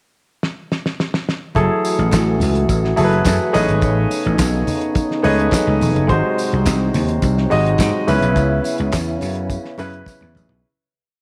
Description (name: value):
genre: disco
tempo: 106 BPM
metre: 4/4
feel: straight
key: F# dorian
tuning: A4 = 439 Hz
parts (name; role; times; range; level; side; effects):
- damped 70s drum kit; drums; 0.4-10.6 s; handclaps, hi-hat, kick drum, snare drum, toms; -25 LUFS; equal; none
- congas; percussion; 1.5-10.5 s; none; -30 LUFS; equal; none
- warm concert grand piano; accompaniment; 1.6-10.7 s; C#3 to D#5; -22 LUFS; equal; none
- dark French horn section; sustained chords; 1.6-10.6 s; B#2 to F#4; -25 LUFS; equal; none
- vintage slap bass; bass; 1.6-10.6 s; E1 to G#2; -21 LUFS; equal; none
- tambourine; percussion; 1.8-10.5 s; none; -36 LUFS; equal; none
room: light reverb, small room ambience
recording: none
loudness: -18 LUFS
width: mono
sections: 0.0-1.6 pickup bar; 1.6-10.6 verse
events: drum fill 0.4-1.6, 10.1-10.6; fade-out 8.4-10.6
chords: 0.0 N.C.; 1.6 F#m9; 3.5 Amaj9#11; 6.1 G#7; 8.1 C#m7